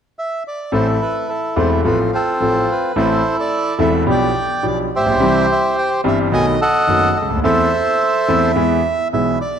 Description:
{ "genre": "tango", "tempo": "107 BPM", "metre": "4/4", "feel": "rubato", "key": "A minor", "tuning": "A4 = 440 Hz", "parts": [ { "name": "bandoneon", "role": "melody", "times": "0.2-9.6 s", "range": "C4 to G#5", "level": "-17 LUFS", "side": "right 1 dB", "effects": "none" }, { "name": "clear concert grand piano", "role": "accompaniment", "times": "0.7-9.4 s", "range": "E1 to A4", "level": "-17 LUFS", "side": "left 1 dB", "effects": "none" } ], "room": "light reverb", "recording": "close, detailed microphones", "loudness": "-14 LUFS", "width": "side -8 dB against mid", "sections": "0.7-9.6 A section", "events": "none", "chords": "0.0 N.C.; 0.7 Am; 1.8 F/A; 3.0 Am; 4.1 G7/B; 5.2 C; 6.3 B7; 7.4 Am/E; 8.5 E", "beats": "0.16 | 0.72 1.28 1.84 2.40 | 2.96 3.51 4.07 4.63 | 5.19 5.75 6.31 6.86 | 7.42 7.99 8.55 9.11" }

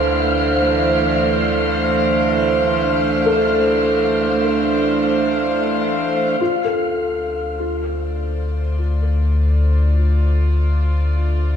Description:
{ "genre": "ambient", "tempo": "free time", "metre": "none", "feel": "none", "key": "D minor", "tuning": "A4 = 441 Hz", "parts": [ { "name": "dark studio string section", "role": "sustained chords", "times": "0.0-11.6 s", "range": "E3 to D5", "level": "-19 LUFS", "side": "right 2 dB", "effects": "none" }, { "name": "warm sub bass", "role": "bass", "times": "0.0-11.6 s", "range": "D2", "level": "-20 LUFS", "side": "left 1 dB", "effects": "none" }, { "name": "overtone-sweeping drone", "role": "drone", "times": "0.1-6.5 s", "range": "D3 to A3", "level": "-36 LUFS", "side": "equal", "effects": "none" }, { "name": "wind-like tuned noise texture", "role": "texture", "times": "0.0-6.4 s", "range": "F5 to F6", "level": "-24 LUFS", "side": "left 3 dB", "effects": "built-in reverb" }, { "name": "felt-muted upright piano", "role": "arpeggios", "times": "3.3-11.6 s", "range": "F4 to A4", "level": "-23 LUFS", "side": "left 2 dB", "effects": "tape echo" } ], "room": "wet scoring stage reverb, RT60 2.0 s, small room ambience", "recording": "cassette tape", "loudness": "-15 LUFS", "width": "side -8 dB against mid", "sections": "0.0-6.4 A section; 6.4-11.6 B section", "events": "fade-out on sub bass 0.0-6.4; fade-in on string section 6.4-11.6", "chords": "0.0 Dm9; 6.4 Dm7", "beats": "free time" }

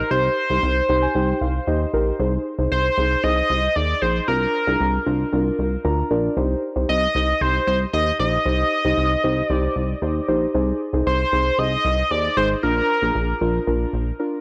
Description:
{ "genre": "synth-pop", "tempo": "115 BPM", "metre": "4/4", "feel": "straight", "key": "C minor", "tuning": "A4 = 440 Hz", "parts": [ { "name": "octave-doubled lead", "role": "melody", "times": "0.0-13.6 s", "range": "Bb4 to Eb5", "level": "-24 LUFS", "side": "equal", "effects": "chorus, analog delay" }, { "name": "muted felt-like synth keys", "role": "accompaniment", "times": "0.0-14.4 s", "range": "D4 to C6", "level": "-26 LUFS", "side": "equal", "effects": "chorus" }, { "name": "chorused synth bass", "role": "bass", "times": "0.0-14.1 s", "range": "Ab1 to Eb2", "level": "-26 LUFS", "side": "equal", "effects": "none" } ], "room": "light reverb", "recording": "dry, gritty hardware recording", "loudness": "-21 LUFS", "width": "mono", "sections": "0.0-14.4 A section", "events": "synth keys fill 0.6-2.2, 5.6-6.4", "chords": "0.0 Cm; 2.2 Ab/C; 4.3 Bb/C; 6.4 Cm; 10.5 Ab/C; 12.6 Bb", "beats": "| 0.11 0.63 1.15 1.67 | 2.19 2.72 3.24 3.76 | 4.28 4.80 5.33 5.85 | 6.37 6.89 7.41 7.93 | 8.46 8.98 9.50 10.02 | 10.54 11.06 11.59 12.11 | 12.63 13.15 13.67 14.20" }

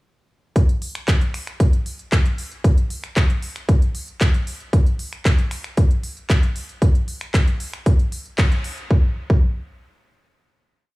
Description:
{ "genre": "nu-disco", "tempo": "115 BPM", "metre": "4/4", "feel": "straight", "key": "none", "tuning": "none", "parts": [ { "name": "electronic kick drum", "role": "drums", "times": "0.6-9.4 s", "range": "none", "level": "-16 LUFS", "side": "equal", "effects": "none" }, { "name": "house drum kit", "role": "drums", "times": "0.6-8.9 s", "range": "finger snaps, handclaps, hi-hat", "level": "-28 LUFS", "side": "equal", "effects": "none" } ], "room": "little or no reverb", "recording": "dry, gritty hardware recording, cassette tape, studio reverb", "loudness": "-18 LUFS", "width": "side -21 dB against mid", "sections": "0.6-8.9 drop; 8.9-11.0 final hit", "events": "drop 0.6-8.9; band accent 8.4", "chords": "none", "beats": "| 0.56 1.08 1.60 2.12 | 2.65 3.17 3.69 4.21 | 4.73 5.25 5.78 6.30 | 6.82 7.34 7.86 8.38 | 8.91" }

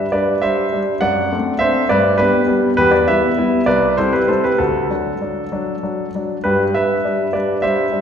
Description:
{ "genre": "classical-period piano sonatina", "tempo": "67 BPM (dotted quarters)", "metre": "6/8", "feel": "rubato", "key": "G major", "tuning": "A4 = 440 Hz", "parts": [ { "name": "warm concert grand piano", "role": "solo", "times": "0.0-8.0 s", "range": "C2 to F#5", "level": "-14 LUFS", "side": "equal", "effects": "none" } ], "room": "wet recital hall reverb, RT60 1.7 s", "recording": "recorded in a church or concert hall", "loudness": "-14 LUFS", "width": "side -8 dB against mid", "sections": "0.0-8.0 A section", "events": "none", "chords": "0.0 G; 1.0 D7/F#; 1.9 G; 2.8 Em; 3.7 C; 4.6 D; 6.4 G", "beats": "0.13 | 1.02 1.90 | 2.78 3.68 | 4.59 5.51 | 6.43 7.34" }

